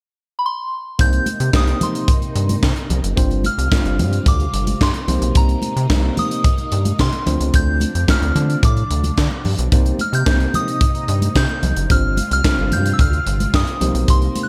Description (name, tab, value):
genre	early-eighties boogie funk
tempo	110 BPM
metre	4/4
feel	straight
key	C dorian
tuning	A4 = 440 Hz
part	soft synth bell	melody	0.4-14.5 s	Bb5 to G6	-26 LUFS	equal	chorus
part	tine electric piano	accompaniment	1.0-14.5 s	G3 to C5	-27 LUFS	equal	none
part	string machine, full ensemble	sustained chords	1.0-14.5 s	C3 to F4	-33 LUFS	equal	ensemble chorus
part	rubbery square bass	bass	1.0-14.3 s	F#1 to D3	-21 LUFS	equal	none
part	tight funk drum kit	drums	1.0-14.5 s	handclaps, hi-hat, kick drum, snare drum	-21 LUFS	equal	gated reverb
part	congas	percussion	1.1-14.5 s	none	-29 LUFS	equal	none
room	small room ambience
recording	none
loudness	-18 LUFS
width	mono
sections	1.0-14.5 A section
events	none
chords	0.0 N.C.; 1.0 Cm7; 3.2 G7sus4; 5.1 Cm7; 7.3 Dm7; 9.7 Cm7; 11.9 G7sus4; 13.8 Cm7